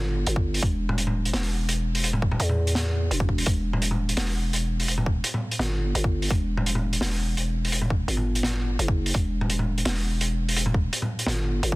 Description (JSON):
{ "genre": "half-time drum and bass", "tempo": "169 BPM", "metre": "4/4", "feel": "half-time", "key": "E minor", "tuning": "A4 = 440 Hz", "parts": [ { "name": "growling 808-style bass", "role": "bass", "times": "0.0-11.8 s", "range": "E1 to E2", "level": "-25 LUFS", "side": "equal", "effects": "none" }, { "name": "crunchy breakbeat drum kit", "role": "drums", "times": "0.3-11.7 s", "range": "hi-hat, snare drum, toms", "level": "-27 LUFS", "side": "equal", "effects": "none" }, { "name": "electronic kick drum", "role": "drums", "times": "0.4-11.8 s", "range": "none", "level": "-24 LUFS", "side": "equal", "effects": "none" } ], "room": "little or no reverb", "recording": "dense, heavily limited modern master", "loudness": "-23 LUFS", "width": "side -21 dB against mid", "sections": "0.0-11.8 A section", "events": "none", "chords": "none", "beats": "0.27 | 0.62 0.98 1.33 1.69 | 2.04 2.40 2.75 3.11 | 3.46 3.82 4.17 4.53 | 4.88 5.24 5.59 5.95 | 6.30 6.66 7.01 7.37 | 7.73 8.08 8.44 8.79 | 9.15 9.50 9.86 10.21 | 10.57 10.92 11.28 11.63" }